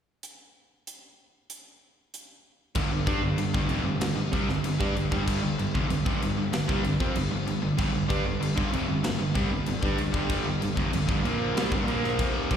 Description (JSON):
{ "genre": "hard rock", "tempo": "95 BPM", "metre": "4/4", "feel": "straight", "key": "unclear", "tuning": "A4 = 444 Hz", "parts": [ { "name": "tight metal drum kit", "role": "drums", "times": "0.2-12.6 s", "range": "crash cymbal, hi-hat, kick drum, snare drum", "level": "-31 LUFS", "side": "left 1 dB", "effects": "none" }, { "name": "high-gain distorted guitar", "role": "riff", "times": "2.8-12.6 s", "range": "F2 to D4", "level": "-31 LUFS", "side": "left 10 dB", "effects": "distortion, slapback echo" }, { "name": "overdriven semi-hollow guitar", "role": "riff", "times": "2.8-12.6 s", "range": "F2 to D4", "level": "-29 LUFS", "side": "right 8 dB", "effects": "spring reverb, slapback echo" }, { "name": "picked electric bass", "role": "bass", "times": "2.8-12.6 s", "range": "F1 to G2", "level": "-31 LUFS", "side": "left 1 dB", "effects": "none" } ], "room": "small room reverb", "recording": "live gig heard through the venue's PA, recital hall reverb", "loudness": "-24 LUFS", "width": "side -8 dB against mid", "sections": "0.2-2.8 A section; 2.8-12.6 B section", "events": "none", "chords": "0.2 N.C.; 2.8 G5", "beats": "| 0.23 0.86 1.49 2.12 | 2.75 3.38 4.01 4.64 | 5.27 5.90 6.53 7.16 | 7.79 8.42 9.05 9.68 | 10.31 10.94 11.57 12.20" }